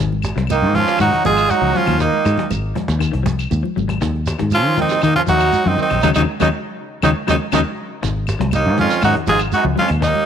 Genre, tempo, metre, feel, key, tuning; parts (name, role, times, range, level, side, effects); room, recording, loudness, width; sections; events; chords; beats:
afrobeat; 120 BPM; 4/4; straight; Ab mixolydian; A4 = 441 Hz
clean electric guitar; arpeggios; 0.0-10.2 s; Db3 to Gb3; -24 LUFS; left 12 dB; wide subtle chorus
fingered electric bass; bass; 0.0-10.1 s; Ab1 to Eb3; -19 LUFS; left 1 dB
congas; percussion; 0.1-10.3 s; -28 LUFS; right 9 dB
cajon; drums; 0.2-10.2 s; -28 LUFS; left 1 dB
claves; percussion; 0.2-10.0 s; -32 LUFS; left 15 dB
shekere; percussion; 0.2-10.2 s; -28 LUFS; right 4 dB
raspy tenor saxophone; melody; 0.5-10.3 s; Eb4 to Ab4; -18 LUFS; left 1 dB
bright trumpet; second line; 0.5-10.3 s; Bb3 to F4; -24 LUFS; right 10 dB
clear trombone section; second line; 0.5-10.3 s; Eb2 to Ab3; -23 LUFS; right 11 dB; slapback echo
light reverb, small room ambience; 1960s-style stereo with parts hard left and right; -14 LUFS; side -8 dB against mid
0.0-8.0 A section; 8.0-10.3 A section
band accent 6.0-8.0; drum fill 7.3-8.0
0.0 Ab7(no3); 4.0 Ebm; 8.0 Ab7(no3)
0.50 1.00 1.50 | 2.01 2.51 3.01 3.52 | 4.02 4.52 5.03 5.53 | 6.03 6.53 7.03 7.53 | 8.03 8.53 9.03 9.53 | 10.03